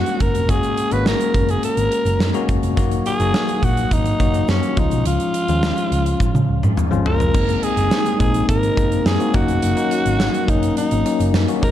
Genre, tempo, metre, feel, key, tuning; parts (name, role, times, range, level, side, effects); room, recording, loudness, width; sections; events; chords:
1980s-style pop; 105 BPM; 4/4; straight; F# major; A4 = 440 Hz
growling alto saxophone; melody; 0.0-11.7 s; C#4 to B4; -22 LUFS; right 1 dB
bell-like tine electric piano; accompaniment; 0.0-11.7 s; E#3 to F#4; -22 LUFS; left 6 dB; fast stereo tremolo
hollow-body short-scale picked electric bass; bass; 0.0-11.7 s; E#1 to C#3; -21 LUFS; right 1 dB
huge arena drum kit; drums; 0.1-11.7 s; crash cymbal, hi-hat, kick drum, snare drum, tambourine, toms; -21 LUFS; right 1 dB
egg shaker; percussion; 0.1-11.6 s; -44 LUFS; right 15 dB
dark French horn section; sustained chords; 7.3-11.7 s; B#2 to D#4; -27 LUFS; right 2 dB
light reverb, small room reverb; dark, warm production; -16 LUFS; side -11 dB against mid
0.0-7.3 A section; 7.3-11.7 B section
drum fill 6.2-7.3
0.0 F#add9; 2.8 D#m/F#; 4.8 C#; 7.3 G#add9/F#; 9.3 F#6